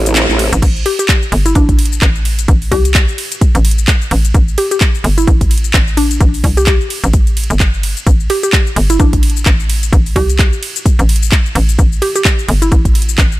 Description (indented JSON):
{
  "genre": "bass house",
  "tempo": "129 BPM",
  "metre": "4/4",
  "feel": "swing 58% on 16ths",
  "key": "A dorian",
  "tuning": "A4 = 438 Hz",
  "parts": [
    { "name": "dark analog pad", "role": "sustained chords", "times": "0.0-13.4 s", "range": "A3 to F#5", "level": "-25 LUFS", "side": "right 1 dB", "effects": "chorus, phaser, sidechain pumping" },
    { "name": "growl bass", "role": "bass", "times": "0.0-0.5 s", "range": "A1", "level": "-12 LUFS", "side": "equal", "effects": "chorus, sidechain pumping" },
    { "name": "house drum kit", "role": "drums", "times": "0.1-13.4 s", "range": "crash cymbal, handclaps, hi-hat, ride cymbal, shaker", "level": "-17 LUFS", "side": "equal", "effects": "none" },
    { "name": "hollow knocking FM bass", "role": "bass", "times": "0.5-13.4 s", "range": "G1 to C2", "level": "-13 LUFS", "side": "equal", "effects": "tube saturation, sidechain pumping" },
    { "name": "electronic kick drum", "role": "drums", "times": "0.6-13.3 s", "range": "none", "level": "-11 LUFS", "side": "equal", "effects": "none" },
    { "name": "mallet-like synth pluck", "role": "melody", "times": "0.9-12.7 s", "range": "D4 to G4", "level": "-17 LUFS", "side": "equal", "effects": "chorus, ping-pong delay" }
  ],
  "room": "little or no reverb",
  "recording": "none",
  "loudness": "-10 LUFS",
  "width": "side -17 dB against mid",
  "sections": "0.6-13.4 A section",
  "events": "break 0.0-0.6; band accent 0.2; drop 0.6-13.4",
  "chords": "0.0 Am; 0.6 Amadd9"
}